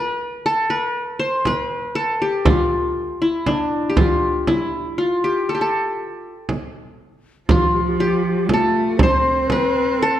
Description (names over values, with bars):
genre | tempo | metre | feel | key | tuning
Arabic maqam ensemble | 119 BPM (eighths) | 10/8 | straight | A maqam bayati | A4 = 445 Hz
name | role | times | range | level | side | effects
qanun | melody | 0.0-10.2 s | D4 to C5 | -19 LUFS | left 1 dB | none
frame drum | percussion | 1.5-9.7 s | none | -20 LUFS | right 2 dB | none
breathy reedy ney | second line | 7.5-10.2 s | F4 to C5 | -23 LUFS | left 5 dB | none
rich cello | second line | 7.5-10.2 s | F3 to C4 | -22 LUFS | right 4 dB | none
room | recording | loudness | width
moderate recital hall reverb, RT60 1.6 s | dark, warm production, faint mains hum | -17 LUFS | side -11 dB against mid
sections
0.0-7.5 A section; 7.5-10.2 B section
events
none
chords
none